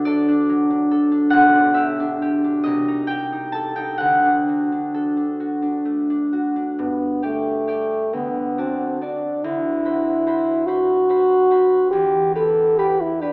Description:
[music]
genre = classical, romantic duo for French horn and harp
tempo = 42-49 BPM (dotted quarters)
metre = 6/8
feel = rubato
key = unclear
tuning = A4 = 439 Hz
[part]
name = concert harp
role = accompaniment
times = 0.0-13.3 s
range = B1 to B5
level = -22 LUFS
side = equal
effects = none
[part]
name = mellow French horn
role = melody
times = 6.8-13.3 s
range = A3 to A4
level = -20 LUFS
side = equal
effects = none
[sound]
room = wet concert hall reverb, RT60 2.0 s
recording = recorded in a church or concert hall, small speaker sound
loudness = -20 LUFS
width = mono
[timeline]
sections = 0.0-6.8 A section; 6.8-13.3 B section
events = none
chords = 0.0 D; 1.3 G/B; 2.6 Am7b5/C; 4.0 D; 6.8 G5; 8.1 D; 9.4 D13; 11.9 Em

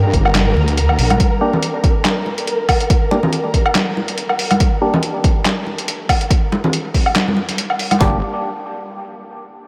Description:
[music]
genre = deep dubstep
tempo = 141 BPM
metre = 4/4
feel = swing 55% on 16ths, half-time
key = G minor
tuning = A4 = 439 Hz
[part]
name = wobble bass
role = bass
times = 0.0-1.2, 8.0-8.2 s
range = G1 to G2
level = -18 LUFS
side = equal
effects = chorus
[part]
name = flickering grainy texture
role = texture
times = 0.0-8.0 s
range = Bb4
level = -27 LUFS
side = equal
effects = built-in reverb
[part]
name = deep house drum kit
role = drums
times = 0.1-8.1 s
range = handclaps, kick drum, snare drum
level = -18 LUFS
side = equal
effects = none
[part]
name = trip hop sampler-style drum kit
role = drums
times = 0.1-8.0 s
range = handclaps, hi-hat, snare drum, woodblock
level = -22 LUFS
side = equal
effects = overdrive
[part]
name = congas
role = percussion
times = 0.6-8.0 s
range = none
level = -25 LUFS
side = equal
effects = dub echo
[part]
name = percussive organ stab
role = stabs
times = 1.4-4.9, 8.0-8.2 s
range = Bb3 to G4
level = -27 LUFS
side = equal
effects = chorus, dub echo
[sound]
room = moderate huge ambient reverb, RT60 4.8 s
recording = dreamy mix soaked in reverb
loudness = -16 LUFS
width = mono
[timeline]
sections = 0.0-8.0 A section; 8.0-9.7 B section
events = none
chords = 0.0 Gm

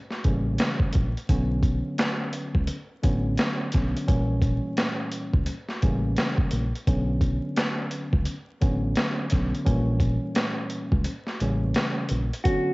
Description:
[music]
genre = hip hop, boom-bap hip-hop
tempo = 86 BPM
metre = 4/4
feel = swing 61% on 16ths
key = unclear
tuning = A4 = 438 Hz
[part]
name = boom bap sampler-style drum kit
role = drums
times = 0.1-12.7 s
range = hi-hat, kick drum, snare drum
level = -25 LUFS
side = equal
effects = cassette tape
[part]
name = deep dub fingered electric bass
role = bass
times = 0.2-12.3 s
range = A1 to C#2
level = -26 LUFS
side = equal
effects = tube saturation
[part]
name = mellow tine electric piano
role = accompaniment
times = 0.3-12.7 s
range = Bb2 to C#4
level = -29 LUFS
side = equal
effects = medium stereo tremolo, high-pass filter, low-pass filter
[part]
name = mellow electric guitar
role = melody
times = 12.4-12.7 s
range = F#4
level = -23 LUFS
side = equal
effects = high-pass filter, low-pass filter
[sound]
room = light reverb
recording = home recording on cassette, vinyl crackle, nothing above 7.9 kHz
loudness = -23 LUFS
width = side -24 dB against mid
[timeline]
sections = 0.0-12.5 A section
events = break 11.1-12.5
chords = 0.0 A7b9; 1.3 Bmadd9; 4.1 A7b9 (rootless); 6.9 Bmadd9; 9.7 A7b9 (rootless)

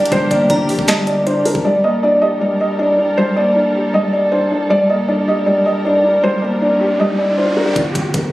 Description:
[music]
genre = hip hop, trap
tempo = 157 BPM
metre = 4/4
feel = half-time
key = G minor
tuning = A4 = 440 Hz
[part]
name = felt-muted upright piano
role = melody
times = 0.0-7.7 s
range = Bb4 to Eb5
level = -16 LUFS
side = equal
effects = digital delay
[part]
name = glassy synth bell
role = second line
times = 0.0-1.6 s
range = A5 to Bb5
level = -28 LUFS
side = right 1 dB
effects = chorus, phaser, digital delay
[part]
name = dark concert grand piano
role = accompaniment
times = 0.0-7.8 s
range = G3 to G4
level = -17 LUFS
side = left 1 dB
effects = none
[part]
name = dark studio string section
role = sustained chords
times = 0.0-7.7 s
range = G2 to Bb4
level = -25 LUFS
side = right 1 dB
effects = none
[part]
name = long sustained 808-style bass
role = bass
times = 0.1-1.6, 7.8-8.3 s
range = F#1 to Bb1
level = -23 LUFS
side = equal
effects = none
[part]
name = trap drum kit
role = drums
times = 0.1-1.6, 7.8-8.2 s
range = hi-hat, kick drum, snare drum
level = -20 LUFS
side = equal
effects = none
[part]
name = riser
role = sound effects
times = 6.2-7.8 s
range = none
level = -25 LUFS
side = right 1 dB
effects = none
[sound]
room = small room reverb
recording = recorded on a phone in the room, studio reverb, compression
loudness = -13 LUFS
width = side -17 dB against mid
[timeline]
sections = 0.0-1.6 A section; 1.6-7.8 B section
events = riser 6.2-7.8; break 7.8-8.3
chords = 0.0 Gm; 1.6 Gmadd9; 7.8 G5

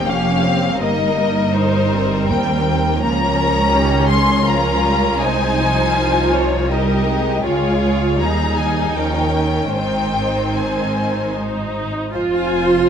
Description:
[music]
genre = classical, slow romantic movement for string orchestra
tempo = 73-86 BPM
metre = 3/4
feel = rubato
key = Ab major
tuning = A4 = 443 Hz
[part]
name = warm studio violin section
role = melody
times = 0.0-12.9 s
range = C5 to C6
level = -21 LUFS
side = left 4 dB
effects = none
[part]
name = rich chamber violin section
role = second line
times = 0.0-12.9 s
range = C4 to C6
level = -22 LUFS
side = left 1 dB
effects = none
[part]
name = rich chamber viola section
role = accompaniment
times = 0.0-12.9 s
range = Eb3 to F4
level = -21 LUFS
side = right 1 dB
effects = none
[part]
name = rich chamber double bass section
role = bass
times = 0.0-12.9 s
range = F1 to Eb2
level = -22 LUFS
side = right 2 dB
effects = none
[part]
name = warm studio cello section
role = bass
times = 0.0-12.9 s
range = C2 to Ab2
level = -23 LUFS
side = right 3 dB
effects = none
[sound]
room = moderate scoring stage reverb, RT60 2.0 s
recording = dark, warm production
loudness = -15 LUFS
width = side -8 dB against mid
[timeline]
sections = 0.0-12.1 A section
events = none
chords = 0.0 Eb (rootless); 0.8 Eb/G; 3.0 Eb7/Db; 5.2 Ab/C; 7.4 Db; 8.2 Ab5/Eb; 9.0 Eb9; 9.8 Ab; 12.1 Fm

